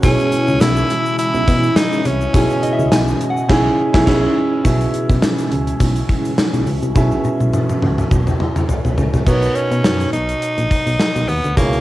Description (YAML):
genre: 1980s-style pop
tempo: 104 BPM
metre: 4/4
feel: swing 55% on 16ths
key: unclear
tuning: A4 = 439 Hz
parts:
  - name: raspy tenor saxophone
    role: melody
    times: 0.0-2.9, 9.3-11.8 s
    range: A#3 to E4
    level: -20 LUFS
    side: equal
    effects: none
  - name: warm baby grand piano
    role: accompaniment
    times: 0.0-11.8 s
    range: B2 to E5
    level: -20 LUFS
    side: right 2 dB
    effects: cassette tape
  - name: ensemble organ-string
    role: sustained chords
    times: 0.0-9.2 s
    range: C#3 to D#5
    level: -24 LUFS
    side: left 1 dB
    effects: phaser, ensemble chorus, cassette tape
  - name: solid FM bass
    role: bass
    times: 0.0-11.8 s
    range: A#1 to B2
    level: -19 LUFS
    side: equal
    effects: none
  - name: gated 80s drum kit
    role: drums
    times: 0.0-11.8 s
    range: crash cymbal, hi-hat, kick drum, snare drum, tambourine, toms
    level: -17 LUFS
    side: equal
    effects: cassette tape
  - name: tube shaker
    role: percussion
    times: 0.0-11.8 s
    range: none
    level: -42 LUFS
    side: left 6 dB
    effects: none
  - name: soft synth bell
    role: second line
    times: 2.6-3.5 s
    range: D#5 to G#5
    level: -23 LUFS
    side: left 2 dB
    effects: chorus, cassette tape, analog delay
room: light reverb, small room reverb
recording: home recording on cassette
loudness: -14 LUFS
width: side -16 dB against mid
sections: 0.0-4.6 A section; 4.6-9.3 B section; 9.3-11.8 C section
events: band accent 3.5-4.6; drum fill 7.0-9.3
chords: 0.0 C#m/B; 9.3 Bmaj9